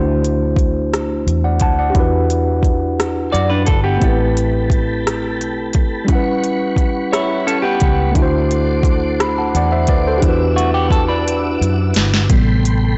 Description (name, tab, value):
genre	slow six-eight R&B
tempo	58 BPM (dotted quarters)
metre	6/8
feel	straight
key	A dorian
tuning	A4 = 440 Hz
part	tine electric piano	accompaniment	0.0-13.0 s	C3 to B5	-21 LUFS	equal	none
part	vintage muted fingered electric bass	bass	0.0-13.0 s	G1 to F#2	-21 LUFS	equal	transformer saturation
part	smooth R&B drum kit	drums	0.2-12.8 s	hi-hat, kick drum, rim click, snare drum	-19 LUFS	equal	overdrive
part	semi-hollow electric guitar	second line	3.3-12.1 s	A3 to D5	-22 LUFS	equal	spring reverb
part	tonewheel organ	sustained chords	4.0-13.0 s	E4 to E6	-30 LUFS	equal	chorus vibrato, slow rotary speaker
room	light reverb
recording	blown-out, overdriven recording, overdrive, nothing above 7.9 kHz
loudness	-16 LUFS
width	mono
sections	0.0-12.3 A section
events	drum fill 11.3-12.3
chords	0.0 D7; 2.0 Em9; 4.0 Am9; 6.1 A13; 8.2 D7; 10.2 Em9; 12.3 Am9